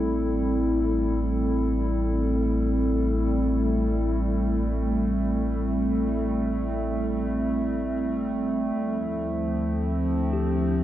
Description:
ambient; free time; A minor; A4 = 440 Hz
warbly tape-like pad; sustained chords; 0.0-10.8 s; F3 to A4; -24 LUFS; equal; chorus, built-in reverb
tine electric piano; arpeggios; 0.0-0.6, 10.3-10.8 s; G4; -35 LUFS; equal; medium stereo tremolo
warm sub bass; bass; 0.0-10.8 s; A1 to D2; -28 LUFS; equal
wet lush hall reverb, RT60 2.8 s; dreamy mix soaked in reverb; -23 LUFS; side -12 dB against mid
0.0-10.8 A section
0.0 Am7; 8.8 Dm7

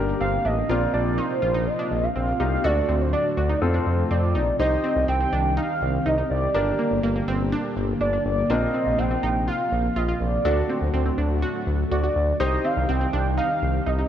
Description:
pop; 123 BPM; 4/4; straight; A4 = 440 Hz
clear baby grand piano; accompaniment; 0.0-14.1 s; C4 to C5; -30 LUFS; left 3 dB
string machine, cellos; sustained chords; 0.0-14.1 s; C3 to G4; -29 LUFS; equal; ensemble chorus
smooth synth bass; bass; 0.0-14.0 s; G1 to F2; -24 LUFS; equal
warm velvety synth lead; melody; 0.2-14.1 s; C5 to G5; -26 LUFS; right 1 dB; chorus, digital delay
analog pluck; arpeggios; 0.2-14.1 s; Bb3 to F#4; -30 LUFS; right 2 dB; chorus, digital delay
light reverb, digital ambience; worn, warbling old tape, cassette tape, warbly pitch drift; -20 LUFS; side -10 dB against mid
0.0-4.6 A section; 4.6-14.1 B section
0.0 Gm; 0.7 Bbsus2; 2.6 D; 3.6 F; 4.6 Cm; 6.5 Gm; 8.5 Bbsus2; 10.4 D; 12.4 Cm

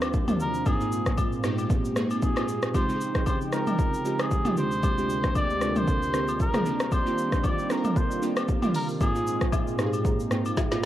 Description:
amapiano; 115 BPM; 4/4; swing 55% on 16ths; Eb major; A4 = 441 Hz
glassy digital keys; accompaniment; 0.0-10.9 s; Eb2 to C6; -29 LUFS; right 1 dB; chorus
warm analog pad; sustained chords; 0.0-10.9 s; D2 to G5; -32 LUFS; equal; chorus, sidechain pumping
deep house drum kit; drums; 0.0-10.9 s; hi-hat, kick drum, rim click, shaker, snare drum, toms; -26 LUFS; equal
agogo bells and woodblock; percussion; 0.0-10.8 s; -38 LUFS; left 5 dB
trumpet with cup mute; melody; 0.4-9.5 s; Ab4 to D5; -31 LUFS; equal; ping-pong delay
digital ambience; worn, warbling old tape, cassette tape, warbly pitch drift; -23 LUFS; side -12 dB against mid
0.0-10.9 A section
synth keys fill 9.5-10.9; drum fill 10.6
0.0 Ebmaj13; 0.7 Ab69; 2.7 Dbmaj9#11; 4.6 Bb13/D; 6.7 Ebmaj13; 9.0 Ab69

